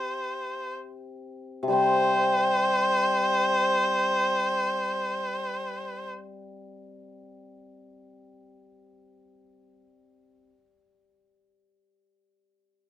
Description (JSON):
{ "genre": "chinese traditional, Chinese chamber ensemble", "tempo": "free time", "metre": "none", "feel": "none", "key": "unclear", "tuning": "A4 = 440 Hz", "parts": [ { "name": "rich erhu", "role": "melody", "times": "0.0-6.1 s", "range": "C5", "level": "-25 LUFS", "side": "equal", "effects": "none" }, { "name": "hammered dulcimer", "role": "accompaniment", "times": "0.0-10.5 s", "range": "C3 to C4", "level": "-28 LUFS", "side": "left 2 dB", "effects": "none" } ], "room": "moderate studio reverb, RT60 0.5 s", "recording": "minimal, uncompressed stereo recording", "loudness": "-23 LUFS", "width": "side -12 dB against mid", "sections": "0.0-1.8 A section; 1.8-6.8 B section", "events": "none", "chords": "none" }